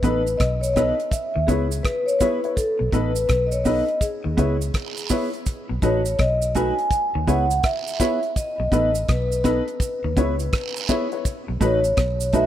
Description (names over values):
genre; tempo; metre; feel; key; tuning
roots reggae; 83 BPM; 4/4; swing 64% on 16ths; unclear; A4 = 439 Hz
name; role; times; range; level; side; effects
vibraphone with medium mallets; melody; 0.0-12.5 s; G#4 to G#5; -23 LUFS; left 1 dB; none
mellow electric guitar; accompaniment; 0.0-12.5 s; A3 to A4; -26 LUFS; right 3 dB; none
clean electric guitar; riff; 0.0-12.2 s; A2 to D#3; -33 LUFS; left 6 dB; none
dark upright piano; stabs; 0.0-12.5 s; D#4 to C#5; -29 LUFS; left 7 dB; none
vintage muted fingered electric bass; bass; 0.0-12.5 s; A1 to D#2; -24 LUFS; equal; none
damped 70s drum kit; drums; 0.0-12.5 s; hi-hat, kick drum, rim click; -24 LUFS; equal; none
cabasa and guiro; percussion; 0.0-12.5 s; none; -33 LUFS; right 10 dB; none
room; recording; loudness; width
light reverb; rough home demo mix; -19 LUFS; side -11 dB against mid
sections
0.0-5.5 A section; 5.5-12.5 B section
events
none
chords
0.0 B7; 1.1 C#m7; 2.6 B7; 4.0 C#m7; 5.5 B7; 6.9 C#m7; 8.4 B7; 9.8 C#m7; 11.2 B7